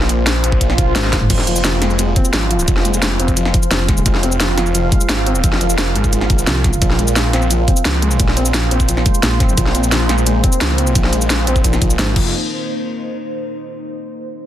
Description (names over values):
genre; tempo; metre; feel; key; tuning
dark technical drum and bass; 174 BPM; 4/4; straight; F minor; A4 = 437 Hz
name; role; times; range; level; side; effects
deep dark ambient pad; sustained chords; 0.0-12.3 s; Bb3 to F5; -22 LUFS; right 1 dB; chorus, built-in reverb, sidechain pumping
snarling distorted saw bass; bass; 0.0-12.3 s; F1 to Db2; -18 LUFS; equal; distortion, overdrive
drum and bass drum kit; drums; 0.0-12.2 s; crash cymbal, hi-hat, shaker, snare drum, toms; -19 LUFS; equal; overdrive
electronic kick drum; drums; 0.5-12.2 s; none; -16 LUFS; equal; overdrive
swell; sound effects; 0.7-1.3 s; none; -25 LUFS; right 2 dB; none
metallic wobble bass; bass; 1.0-1.3, 3.7-4.0, 6.5-6.8, 9.2-9.6, 12.0-12.2 s; F1 to C2; -18 LUFS; equal; chorus
felt-muted upright piano; arpeggios; 1.3-12.3 s; F3 to C4; -22 LUFS; left 2 dB; sidechain pumping, dub echo
room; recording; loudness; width
light reverb, digital ambience; dense, heavily limited modern master; -13 LUFS; side -12 dB against mid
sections
0.0-12.3 A section; 12.3-13.7 B section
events
drop 0.0-12.3; swell 0.7-1.3; drum fill 1.0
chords
0.0 Bbsus2; 1.3 Fm; 6.8 Bbmadd9; 12.2 F5; 12.3 N.C.